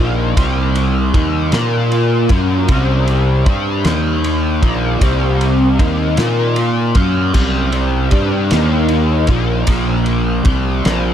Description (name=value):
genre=psychedelic rock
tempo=52 BPM (dotted quarters)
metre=6/8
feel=straight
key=C minor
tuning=A4 = 442 Hz
part: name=crunchy overdriven guitar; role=riff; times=0.0-11.1 s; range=Bb2 to Bb4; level=-15 LUFS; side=equal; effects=flanger, tape echo
part: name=fuzz fingered electric bass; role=bass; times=0.0-11.1 s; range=Bb1 to Bb2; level=-18 LUFS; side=equal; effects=overdrive
part: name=cloth-damped thuddy drum kit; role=drums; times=0.4-11.0 s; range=crash cymbal, kick drum, ride cymbal, snare drum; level=-17 LUFS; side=equal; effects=none
room=studio ambience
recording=echo-heavy mix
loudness=-12 LUFS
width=side -10 dB against mid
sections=0.0-11.1 A section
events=none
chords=0.0 Cm; 1.5 Bb5; 2.3 C5; 3.9 Eb5; 4.6 Cm; 6.2 Bb5; 7.0 C5; 8.5 Eb5; 9.3 Bb5; 10.5 C5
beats=| 0.37 1.53 | 2.70 3.87 | 5.03 6.20 | 7.36 8.53 | 9.69 10.86